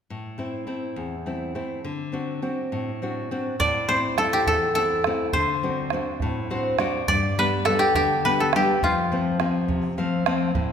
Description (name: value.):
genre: andean folk, Andean ensemble.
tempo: 69 BPM (dotted quarters).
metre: 6/8.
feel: straight.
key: A minor.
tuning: A4 = 440 Hz.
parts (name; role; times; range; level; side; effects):
nylon-string guitar; accompaniment; 0.1-10.7 s; E2 to F5; -26 LUFS; left 2 dB; none.
koto; melody; 3.6-10.7 s; F4 to D5; -22 LUFS; equal; none.
bombo; percussion; 3.6-10.7 s; none; -28 LUFS; right 4 dB; none.
room: wet scoring stage reverb, RT60 2.0 s.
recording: minimal, uncompressed stereo recording.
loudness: -21 LUFS.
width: side -7 dB against mid.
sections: 0.1-3.6 A section; 3.6-10.7 B section.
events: nylon-string guitar fill 6.2-7.1, 9.7-10.6.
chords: 0.1 Am; 1.9 D7; 3.6 Am; 5.3 D7; 7.1 G; 8.8 F.